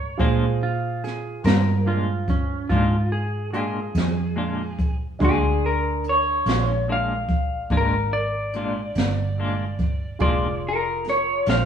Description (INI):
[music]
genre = slow blues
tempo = 48 BPM (dotted quarters)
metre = 12/8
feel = straight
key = Bb mixolydian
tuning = A4 = 440 Hz
[part]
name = clean lap steel guitar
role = second line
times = 0.0-10.6 s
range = Db4 to D5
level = -30 LUFS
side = equal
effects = none
[part]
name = warm concert grand piano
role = accompaniment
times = 0.0-11.7 s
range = D4 to C6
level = -31 LUFS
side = right 4 dB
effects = none
[part]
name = vintage muted fingered electric bass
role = bass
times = 0.0-11.7 s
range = F1 to Bb2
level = -25 LUFS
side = right 2 dB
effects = none
[part]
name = semi-hollow electric guitar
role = accompaniment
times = 0.2-11.7 s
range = Bb2 to F4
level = -28 LUFS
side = left 2 dB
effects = tremolo
[part]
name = jazz brush drum kit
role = drums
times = 0.2-11.7 s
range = hi-hat, kick drum, snare drum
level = -24 LUFS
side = equal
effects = none
[part]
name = electric guitar through a small old amp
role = melody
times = 5.2-11.7 s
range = Ab4 to F5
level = -22 LUFS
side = left 1 dB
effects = none
[sound]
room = wet stone room reverb, RT60 1.1 s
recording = band playing live in one room, studio ambience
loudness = -20 LUFS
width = side -8 dB against mid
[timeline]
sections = 0.0-11.7 A section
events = none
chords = 0.0 Bb7